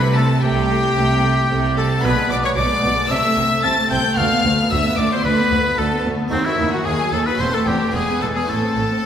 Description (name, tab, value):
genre	classical, baroque-style concerto movement with solo episodes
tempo	112 BPM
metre	4/4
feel	straight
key	A minor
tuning	A4 = 441 Hz
part	rich chamber violin section	melody	0.0-9.1 s	C5 to A6	-24 LUFS	left 4 dB	none
part	clear chamber violin section	second line	0.0-9.1 s	C4 to A5	-26 LUFS	left 1 dB	none
part	harpsichord	accompaniment	0.0-9.1 s	D2 to A4	-27 LUFS	equal	none
part	clear chamber cello section	bass	0.0-8.8 s	D2 to C3	-23 LUFS	right 2 dB	none
part	rich studio double bass section	bass	0.0-8.8 s	E1 to D#2	-26 LUFS	right 2 dB	none
part	clear oboe	melody	0.2-9.1 s	C4 to A5	-21 LUFS	left 1 dB	none
part	rich symphonic viola section	accompaniment	0.2-9.0 s	D#3 to C4	-23 LUFS	equal	none
room	wet scoring stage reverb, RT60 1.6 s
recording	recorded in a church or concert hall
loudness	-16 LUFS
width	side -9 dB against mid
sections	0.0-9.1 A section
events	none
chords	0.0 Am/C; 2.0 G#dim/B; 3.1 Am/C; 4.2 Bm7b5/D; 6.3 D#dim; 7.4 Am/E; 7.9 E; 8.5 Am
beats	0.43 0.97 1.50 | 2.04 2.57 3.11 3.64 | 4.18 4.71 5.25 5.78 | 6.32 6.86 7.40 7.94 | 8.49 9.04